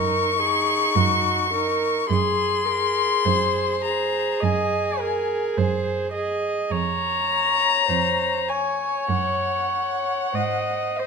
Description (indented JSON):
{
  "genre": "classical, slow romantic movement for string quartet",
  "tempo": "46-54 BPM",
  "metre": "4/4",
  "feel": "rubato",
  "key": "unclear",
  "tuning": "A4 = 440 Hz",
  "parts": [
    { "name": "dark violin", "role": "melody", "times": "0.0-11.1 s", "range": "Eb5 to Db6", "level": "-23 LUFS", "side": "left 7 dB", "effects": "none" },
    { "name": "dark violin", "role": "second line", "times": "0.0-11.1 s", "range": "Eb4 to Db5", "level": "-29 LUFS", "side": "left 1 dB", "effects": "none" },
    { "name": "warm viola", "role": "accompaniment", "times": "0.0-11.1 s", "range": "Gb4 to Eb5", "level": "-26 LUFS", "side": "right 4 dB", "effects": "none" },
    { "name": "warm cello", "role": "bass", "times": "0.0-11.1 s", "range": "F2 to Ab2", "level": "-27 LUFS", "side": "right 6 dB", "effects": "none" }
  ],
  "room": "moderate recital hall reverb, RT60 1.4 s",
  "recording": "close, detailed microphones",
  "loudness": "-20 LUFS",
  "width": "side -5 dB against mid",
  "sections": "0.0-11.1 A section",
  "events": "none",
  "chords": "0.0 Ebm/Gb; 2.1 Ab7/Gb; 6.7 Db/F; 9.1 Gb5; 10.3 Ab"
}